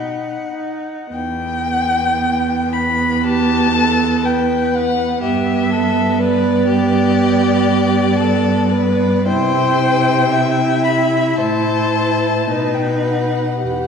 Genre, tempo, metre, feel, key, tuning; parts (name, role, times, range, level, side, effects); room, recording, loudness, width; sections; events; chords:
classical, slow romantic movement for string quartet; 49-62 BPM; 4/4; rubato; E minor; A4 = 438 Hz
dark violin; melody; 0.0-13.9 s; D5 to B5; -20 LUFS; left 5 dB
rich violin; second line; 0.0-13.9 s; G4 to F#5; -21 LUFS; left 2 dB
rich viola; accompaniment; 0.0-13.9 s; B3 to G4; -18 LUFS; right 4 dB
rich cello; bass; 0.0-13.9 s; E2 to C3; -21 LUFS; right 1 dB
wet scoring stage reverb, RT60 1.5 s; heard from further back in the room, nothing above 10.3 kHz; -14 LUFS; side -6 dB against mid
0.0-1.1 A section; 1.1-13.9 A section
0.0 B; 1.1 Em; 5.2 G; 9.3 C; 11.4 Am; 12.5 B